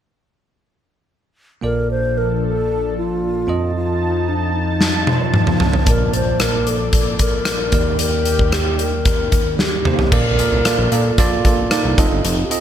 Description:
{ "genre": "1980s-style pop", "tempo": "113 BPM", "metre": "4/4", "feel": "straight", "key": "Bb major", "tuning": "A4 = 441 Hz", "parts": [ { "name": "mellow hollow alto flute", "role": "melody", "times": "1.6-12.6 s", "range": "D4 to C5", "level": "-22 LUFS", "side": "left 1 dB", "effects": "ping-pong delay" }, { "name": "bell-like tine electric piano", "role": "accompaniment", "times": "1.6-12.6 s", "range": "Bb1 to A5", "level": "-22 LUFS", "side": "right 3 dB", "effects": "medium stereo tremolo" }, { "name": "lush unison pad", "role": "sustained chords", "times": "1.6-10.1 s", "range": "Eb2 to A5", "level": "-23 LUFS", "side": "left 2 dB", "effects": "chorus" }, { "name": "huge arena drum kit", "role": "drums", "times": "4.8-12.6 s", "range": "crash cymbal, hi-hat, kick drum, rim click, snare drum, toms", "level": "-17 LUFS", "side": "equal", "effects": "none" }, { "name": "fat analog bass", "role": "bass", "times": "10.1-12.4 s", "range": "F1 to Bb2", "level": "-20 LUFS", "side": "equal", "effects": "none" } ], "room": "light reverb, small room ambience", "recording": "bright 1980s-style digital production", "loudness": "-15 LUFS", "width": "side -10 dB against mid", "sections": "1.6-10.1 A section; 10.1-12.6 B section", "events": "drum fill 4.8-5.9, 9.6-10.1", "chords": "1.6 Bbmaj7; 3.5 F7; 5.9 Bbmaj7; 7.7 Ebmaj7; 10.1 Bbmaj7; 12.0 F7" }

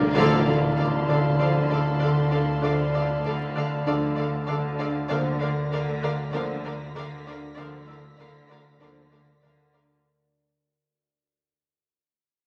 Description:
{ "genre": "cinematic, suspense film score", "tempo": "97 BPM", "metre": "4/4", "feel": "straight", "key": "D minor", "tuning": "A4 = 440 Hz", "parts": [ { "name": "glass harmonica", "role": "sustained chords", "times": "0.0-10.1 s", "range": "Bb4 to Bb5", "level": "-34 LUFS", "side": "equal", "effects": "none" }, { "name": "buzzing marimba with medium mallets", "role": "riff", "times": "0.0-9.9 s", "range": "D3 to D4", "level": "-30 LUFS", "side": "equal", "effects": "none" }, { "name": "bowed-like drone", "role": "drone", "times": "0.0-10.0 s", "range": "D2", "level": "-34 LUFS", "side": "equal", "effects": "built-in reverb" }, { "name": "timpani", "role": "percussion", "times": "0.0-1.0, 5.1-6.0 s", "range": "D3", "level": "-32 LUFS", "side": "equal", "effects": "none" }, { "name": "worn celesta", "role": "texture", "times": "0.0-10.1 s", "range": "E4 to E6", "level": "-43 LUFS", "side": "equal", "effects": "none" }, { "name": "rich studio violin section", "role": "melody", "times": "0.1-9.8 s", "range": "F5", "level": "-40 LUFS", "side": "equal", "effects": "none" }, { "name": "dark French horn section", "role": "sustained chords", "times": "0.1-9.0 s", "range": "A3 to D4", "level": "-38 LUFS", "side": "equal", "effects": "none" }, { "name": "rich studio violin section", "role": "second line", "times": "0.2-9.8 s", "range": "D5", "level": "-38 LUFS", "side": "equal", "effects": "none" }, { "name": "warm studio viola section", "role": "accompaniment", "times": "0.2-9.8 s", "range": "A4 to Bb4", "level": "-34 LUFS", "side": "equal", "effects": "none" }, { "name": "mellow trombone section", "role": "sustained chords", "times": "0.2-9.0 s", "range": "D3 to F3", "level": "-36 LUFS", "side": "equal", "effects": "none" }, { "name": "rich chamber cello section", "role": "bass", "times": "0.2-10.0 s", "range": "D3", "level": "-37 LUFS", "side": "equal", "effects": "none" }, { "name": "warm studio double bass section", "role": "bass", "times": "0.2-10.0 s", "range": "D2", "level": "-39 LUFS", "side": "equal", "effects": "none" }, { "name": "tam-tam", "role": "percussion", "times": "0.2-2.6 s", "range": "none", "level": "-35 LUFS", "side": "equal", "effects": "none" }, { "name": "rich studio violin section", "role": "texture", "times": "0.2-9.7 s", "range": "A5 to B6", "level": "-44 LUFS", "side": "equal", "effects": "none" } ], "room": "wet scoring stage reverb, RT60 1.6 s", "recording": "vinyl crackle", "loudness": "-24 LUFS", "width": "mono", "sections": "0.2-10.1 A section", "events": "timpani fill 0.0; fade-out 0.2-10.1; band accent 0.2-0.8", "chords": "0.2 Dm; 5.1 Bb/D" }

